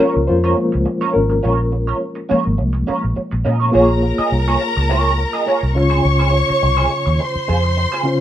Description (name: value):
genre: soul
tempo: 104 BPM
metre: 4/4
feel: swing 54% on 16ths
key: Bb minor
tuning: A4 = 438 Hz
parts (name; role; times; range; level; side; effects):
- reed electric piano; accompaniment; 0.0-8.2 s; Db3 to Db5; -19 LUFS; left 2 dB; fast tremolo
- electric guitar at the edge of break-up; riff; 0.0-8.1 s; Bb3 to Eb5; -20 LUFS; right 3 dB; wah, analog chorus
- vintage muted fingered electric bass; bass; 0.2-7.9 s; Ab1 to Bb2; -18 LUFS; equal; none
- warm studio string section; second line; 3.7-8.2 s; Bb4 to Db6; -20 LUFS; left 1 dB; none
room: moderate small room reverb, RT60 0.5 s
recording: rough home demo mix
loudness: -14 LUFS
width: side -11 dB against mid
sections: 0.0-3.7 A section; 3.7-8.2 B section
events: reed electric piano solo 0.0-3.7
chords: 0.0 Bbm9; 3.7 Bbm7; 5.8 Dbmaj7